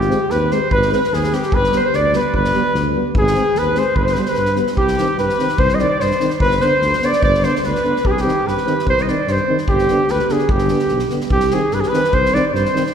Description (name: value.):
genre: balkan folk, Balkan brass band.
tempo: 147 BPM.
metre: 2/4.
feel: straight.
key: unclear.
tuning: A4 = 437 Hz.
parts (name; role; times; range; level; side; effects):
warm flugelhorn; melody; 0.0-12.8 s; G4 to Eb5; -18 LUFS; left 1 dB; none.
clear clarinet; second line; 0.0-12.9 s; G4 to Eb5; -21 LUFS; right 2 dB; none.
mellow tuba; bass; 0.0-12.6 s; G1 to G2; -22 LUFS; equal; none.
unplugged drum kit; percussion; 0.0-12.9 s; kick drum, snare drum; -24 LUFS; equal; none.
dark euphonium; accompaniment; 0.1-12.8 s; D3 to Ab3; -25 LUFS; right 3 dB; none.
mellow euphonium; accompaniment; 0.1-12.8 s; B3 to C4; -26 LUFS; left 3 dB; none.
room: wet church reverb, RT60 2.5 s.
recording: recorded in a church or concert hall.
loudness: -14 LUFS.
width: side -8 dB against mid.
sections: 0.0-4.8 A section; 4.8-11.3 B section; 11.3-12.9 B section.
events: none.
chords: 0.0 Ab; 1.5 G; 3.1 Ab; 4.0 G; 4.8 Cm; 6.4 G; 8.0 Cm; 9.7 G; 11.3 Cm.